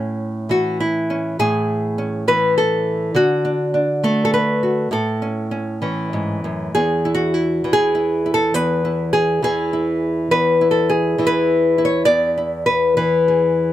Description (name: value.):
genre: folk, solo fingerstyle acoustic guitar.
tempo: 101 BPM.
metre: 3/4.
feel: rubato.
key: unclear.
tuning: A4 = 440 Hz.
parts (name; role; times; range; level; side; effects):
nylon-string guitar; solo; 0.0-13.7 s; E2 to D5; -16 LUFS; equal; none.
room: light reverb.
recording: none.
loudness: -16 LUFS.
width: side -13 dB against mid.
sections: 0.0-6.7 A section; 6.7-13.7 B section.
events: none.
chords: 0.0 Amaj7; 3.1 D; 4.9 A; 6.7 E.